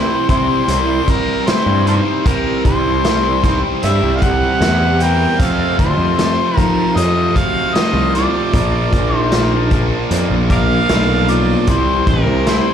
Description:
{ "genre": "blues rock power trio and southern rock", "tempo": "76 BPM", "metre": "4/4", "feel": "straight", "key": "C mixolydian", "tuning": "A4 = 443 Hz", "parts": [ { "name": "warm harmonica", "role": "melody", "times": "0.0-12.7 s", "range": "F4 to G5", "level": "-19 LUFS", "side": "left 1 dB", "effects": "overdrive, slapback echo, tape echo" }, { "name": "dark smooth lead guitar", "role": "second line", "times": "0.0-12.7 s", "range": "C4 to Bb4", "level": "-24 LUFS", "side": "right 6 dB", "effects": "overdrive, slapback echo, tape echo" }, { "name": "overdriven tonewheel organ", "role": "sustained chords", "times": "0.0-12.7 s", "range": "E3 to F5", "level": "-30 LUFS", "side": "right 3 dB", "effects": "none" }, { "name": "fuzz guitar", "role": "riff", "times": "0.0-12.7 s", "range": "F2 to E4", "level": "-20 LUFS", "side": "left 1 dB", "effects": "distortion" }, { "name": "fuzz picked electric bass", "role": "bass", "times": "0.0-12.6 s", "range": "A1 to F3", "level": "-17 LUFS", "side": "equal", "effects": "overdrive" }, { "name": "raw garage drum kit", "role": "drums", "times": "0.3-12.7 s", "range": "hi-hat, kick drum, snare drum", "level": "-19 LUFS", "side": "equal", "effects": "none" } ], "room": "light reverb", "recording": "live gig heard through the venue's PA, club reverb", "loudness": "-12 LUFS", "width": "side -8 dB against mid", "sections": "0.0-12.7 A section", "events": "none", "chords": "0.0 C; 5.4 F; 8.5 Bb; 11.7 C", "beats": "0.69 1.47 | 2.25 3.04 3.82 4.61 | 5.39 6.18 6.96 7.75 | 8.54 9.32 10.11 10.89 | 11.68 12.46" }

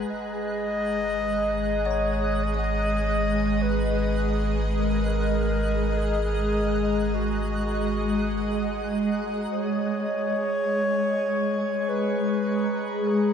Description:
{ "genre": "ambient", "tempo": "free time", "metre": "none", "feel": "none", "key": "G# minor", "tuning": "A4 = 440 Hz", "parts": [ { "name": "evolving wavetable pad", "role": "sustained chords", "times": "0.0-13.3 s", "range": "G#3 to A#5", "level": "-27 LUFS", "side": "equal", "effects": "ensemble chorus, built-in reverb, phaser" }, { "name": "round analog bass", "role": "bass", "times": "0.0-9.5 s", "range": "G#1", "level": "-28 LUFS", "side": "equal", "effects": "none" }, { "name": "bowed-like drone", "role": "drone", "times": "0.0-13.3 s", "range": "G#3 to G#4", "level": "-32 LUFS", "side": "left 2 dB", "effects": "built-in reverb, phaser" }, { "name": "twinkling granular texture", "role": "texture", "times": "0.0-13.3 s", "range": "F#6", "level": "-42 LUFS", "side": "right 2 dB", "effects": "built-in reverb" }, { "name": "warm clarinet", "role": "melody", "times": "0.1-13.3 s", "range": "F#4 to D#5", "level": "-28 LUFS", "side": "left 1 dB", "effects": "diffuse ambient delay" }, { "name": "kalimba", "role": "arpeggios", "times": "1.9-3.8 s", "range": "D#5 to A#5", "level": "-46 LUFS", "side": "equal", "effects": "none" } ], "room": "wet shimmer reverb, RT60 8.2 s", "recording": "dark, warm production", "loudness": "-23 LUFS", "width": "side -8 dB against mid", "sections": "0.0-9.5 A section; 9.5-13.3 B section", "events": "filter sweep on ambient pad 9.5-13.3", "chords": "0.1 D#m/G#; 9.5 G#m7", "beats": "free time" }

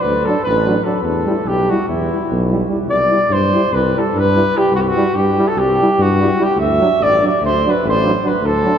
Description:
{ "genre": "balkan folk, Balkan brass band", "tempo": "292 BPM (eighths)", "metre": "9/8", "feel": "straight", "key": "unclear", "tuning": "A4 = 440 Hz", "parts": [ { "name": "warm flugelhorn", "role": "melody", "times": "0.0-8.8 s", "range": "E4 to E5", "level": "-16 LUFS", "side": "equal", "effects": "none" }, { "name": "warm tuba", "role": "bass", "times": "0.0-8.6 s", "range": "A1 to G2", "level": "-19 LUFS", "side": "equal", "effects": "none" }, { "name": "bright trombone", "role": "accompaniment", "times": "0.3-8.7 s", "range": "F#3 to G3", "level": "-23 LUFS", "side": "right 2 dB", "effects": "none" }, { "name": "mellow euphonium", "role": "accompaniment", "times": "0.3-8.7 s", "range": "D4 to E4", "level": "-23 LUFS", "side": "left 1 dB", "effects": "none" } ], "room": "wet cathedral reverb, RT60 6.3 s", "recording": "recorded in a church or concert hall", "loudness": "-13 LUFS", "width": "side -8 dB against mid", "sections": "0.0-2.9 A section; 2.9-8.8 A section", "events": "none", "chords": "0.0 D; 1.0 Em; 2.9 C; 6.6 D", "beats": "0.00 0.20 0.41 0.62 0.82 | 1.03 1.24 1.44 1.65 1.85 2.06 2.27 2.47 2.68 | 2.88 3.09 3.29 3.50 3.71 3.91 4.12 4.32 4.53 | 4.73 4.94 5.14 5.35 5.55 5.76 5.96 6.17 6.37 | 6.58 6.78 6.98 7.19 7.39 7.60 7.80 8.01 8.21 | 8.41 8.62" }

